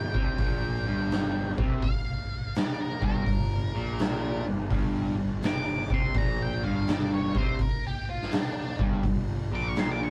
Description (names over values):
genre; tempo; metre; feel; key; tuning
blues rock power trio and southern rock; 83 BPM; 4/4; swing 66% on 8ths; G minor; A4 = 440 Hz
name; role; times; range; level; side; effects
octave-fuzz lead guitar; melody; 0.0-10.1 s; D4 to D6; -37 LUFS; equal; distortion
distorted electric guitar; riff; 0.0-10.1 s; G2 to C3; -34 LUFS; equal; distortion
fuzz picked electric bass; bass; 0.0-10.1 s; G1 to C2; -36 LUFS; equal; overdrive
oversized low-tuned drum kit; drums; 0.1-10.0 s; hi-hat, kick drum, snare drum; -31 LUFS; equal; none
room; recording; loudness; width
moderate booth ambience, RT60 0.2 s; rough rehearsal-room recording, cassette tape; -28 LUFS; mono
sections
0.0-10.1 A section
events
lead electric guitar solo 0.0-10.1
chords
0.0 Gm